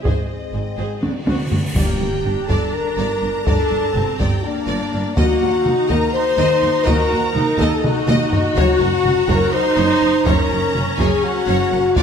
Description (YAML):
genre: cinematic, epic orchestral film score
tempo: 247 BPM (eighths)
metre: 7/8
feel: straight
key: G minor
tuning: A4 = 438 Hz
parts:
  - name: rich symphonic violin section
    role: melody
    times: 0.0-12.0 s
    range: D5 to C6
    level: -29 LUFS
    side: left 2 dB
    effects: none
  - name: clear studio viola section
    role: accompaniment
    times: 0.0-12.0 s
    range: Bb3 to Ab4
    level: -24 LUFS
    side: right 3 dB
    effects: none
  - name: warm French horn section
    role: sustained chords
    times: 0.0-12.0 s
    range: F#3 to C5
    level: -20 LUFS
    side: left 3 dB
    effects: none
  - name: rich symphonic cello section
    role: bass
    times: 0.0-12.0 s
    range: D2 to Bb2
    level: -24 LUFS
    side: right 3 dB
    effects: none
  - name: rich symphonic violin section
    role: second line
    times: 0.1-12.0 s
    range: Gb4 to Bb5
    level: -28 LUFS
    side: left 2 dB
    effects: none
  - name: rich symphonic double bass section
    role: bass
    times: 0.1-12.0 s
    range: F#1 to Eb2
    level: -25 LUFS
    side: right 3 dB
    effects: none
  - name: solo taiko drums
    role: drums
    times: 0.1-12.0 s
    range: none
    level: -21 LUFS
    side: equal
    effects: none
  - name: cymbal swell and impact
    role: sound effects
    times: 1.1-3.5 s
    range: none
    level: -30 LUFS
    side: equal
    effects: none
  - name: timpani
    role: percussion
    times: 1.0-2.4 s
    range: G2 to D3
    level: -26 LUFS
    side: equal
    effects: none
room: moderate scoring stage reverb, RT60 1.8 s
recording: none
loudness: -15 LUFS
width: side -7 dB against mid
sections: 0.0-1.8 A section; 1.8-12.0 B section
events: timpani fill 1.0-1.8; drum fill 1.0-1.8, 7.8-8.6; cymbal swell 1.1-1.8; impact 1.8-3.5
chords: 0.1 Ab; 1.0 D7; 1.8 Gm; 5.2 Ebm; 8.6 F#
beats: | 0.05 0.30 0.54 0.79 1.03 1.27 1.51 | 1.76 2.00 2.25 2.49 2.73 2.98 3.22 | 3.46 3.71 3.95 4.19 4.43 4.68 4.92 | 5.16 5.41 5.65 5.89 6.14 6.38 6.62 | 6.87 7.11 7.35 7.59 7.84 8.08 8.32 | 8.56 8.81 9.05 9.29 9.53 9.78 10.02 | 10.26 10.50 10.75 10.99 11.23 11.47 11.72 | 11.96